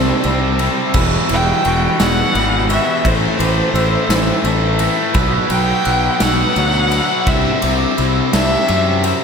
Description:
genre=post-rock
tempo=57 BPM (dotted quarters)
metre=6/8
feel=straight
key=E minor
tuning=A4 = 440 Hz
part: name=rich violin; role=melody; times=0.0-9.1 s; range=C5 to G5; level=-20 LUFS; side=equal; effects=ping-pong delay
part: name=pedal steel guitar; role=sustained chords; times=0.0-9.2 s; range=F#3 to C5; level=-29 LUFS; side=equal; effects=none
part: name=glockenspiel with brass mallets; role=arpeggios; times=0.0-9.2 s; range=D6 to G6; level=-27 LUFS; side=right 3 dB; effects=ping-pong delay
part: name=twangy electric guitar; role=arpeggios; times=0.0-9.2 s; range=A2 to F#4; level=-25 LUFS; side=left 3 dB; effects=ping-pong delay
part: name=biting overdriven guitar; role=riff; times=0.0-9.2 s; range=E2 to C4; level=-22 LUFS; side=right 9 dB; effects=phaser
part: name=distorted electric guitar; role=riff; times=0.0-9.2 s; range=E2 to C4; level=-22 LUFS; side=left 9 dB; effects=distortion
part: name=fuzz fingered electric bass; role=bass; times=0.0-9.1 s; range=E1 to F#2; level=-19 LUFS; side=equal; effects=overdrive
part: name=big rock drum kit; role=drums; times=0.2-9.2 s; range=crash cymbal, kick drum, ride cymbal, snare drum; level=-20 LUFS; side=equal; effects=none
room=wet lush hall reverb, RT60 1.9 s, small room reverb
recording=dreamy mix soaked in reverb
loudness=-13 LUFS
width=side -6 dB against mid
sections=0.0-9.2 A section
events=none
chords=0.0 Cadd9; 0.9 Emadd9; 3.1 Am; 5.2 Bsus4; 7.3 Cadd9

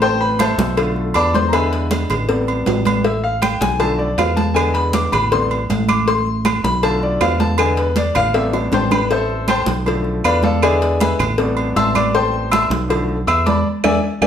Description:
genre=latin, salsa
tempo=158 BPM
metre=4/4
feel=straight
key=A minor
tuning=A4 = 439 Hz
part: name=bright concert grand piano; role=accompaniment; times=0.0-14.3 s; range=B2 to E6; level=-19 LUFS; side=left 2 dB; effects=none
part: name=fingered electric bass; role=bass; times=0.0-14.3 s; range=A1 to E2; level=-21 LUFS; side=right 1 dB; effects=none
part: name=congas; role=percussion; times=0.0-14.3 s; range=none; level=-22 LUFS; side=right 1 dB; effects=none
part: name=cowbell and bongos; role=percussion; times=0.0-14.3 s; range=none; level=-24 LUFS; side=left 4 dB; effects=none
part: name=agogo bells and timbales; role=percussion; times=0.4-14.3 s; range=none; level=-24 LUFS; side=right 6 dB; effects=none
part: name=claves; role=percussion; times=3.4-14.3 s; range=none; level=-28 LUFS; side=right 5 dB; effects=none
room=wet studio reverb, RT60 0.8 s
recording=heard from further back in the room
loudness=-15 LUFS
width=side -8 dB against mid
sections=0.0-14.3 A section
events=grand piano solo 0.0-14.3; drum fill 8.5-9.1; band accent 13.7-14.3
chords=0.0 Am7; 0.8 Bm7b5; 1.5 E7; 2.3 Am7; 3.8 Bm7b5; 4.6 E7; 5.3 Am7; 6.8 Bm7b5; 7.6 E7; 8.3 Am7; 9.9 Bm7b5; 10.6 E7; 11.4 Am7; 12.9 Bm7b5; 13.7 E7

